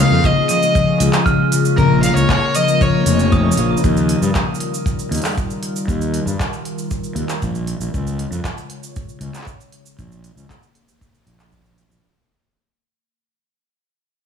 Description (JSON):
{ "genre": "folktronica", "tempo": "117 BPM", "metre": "4/4", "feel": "straight", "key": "Eb mixolydian", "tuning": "A4 = 440 Hz", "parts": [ { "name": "rich violin", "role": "melody", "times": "0.0-3.6 s", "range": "Bb4 to F5", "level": "-20 LUFS", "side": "left 2 dB", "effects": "tape echo" }, { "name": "warbly tape-like pad", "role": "sustained chords", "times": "0.0-12.0 s", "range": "Db3 to Db5", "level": "-25 LUFS", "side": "equal", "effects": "chorus, built-in reverb, phaser" }, { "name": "concert harp", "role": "arpeggios", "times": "0.0-6.3 s", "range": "Db3 to Db5", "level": "-19 LUFS", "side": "left 4 dB", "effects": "tape echo" }, { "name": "fuzz fingered electric bass", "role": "bass", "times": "0.0-12.0 s", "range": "F1 to G2", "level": "-19 LUFS", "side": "equal", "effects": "overdrive" }, { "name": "kick drum", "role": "drums", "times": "0.2-11.6 s", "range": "none", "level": "-21 LUFS", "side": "equal", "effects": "none" }, { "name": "organic electronic drum kit", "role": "drums", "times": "0.2-12.0 s", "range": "cabasa, handclaps, hi-hat", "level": "-26 LUFS", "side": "right 2 dB", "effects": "none" }, { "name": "glockenspiel with soft plastic mallets", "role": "second line", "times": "0.5-3.6 s", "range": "Eb6 to Eb7", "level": "-25 LUFS", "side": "right 6 dB", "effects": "tape echo" } ], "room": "light reverb, small room ambience", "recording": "none", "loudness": "-15 LUFS", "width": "side -7 dB against mid", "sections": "0.0-3.8 A section; 3.8-12.0 B section", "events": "fade-out 3.8-12.0; filter sweep on ambient pad 3.8-12.0", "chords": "0.0 Db; 1.8 Bbm; 3.8 Ebadd9; 7.9 Db; 10.0 Bbm" }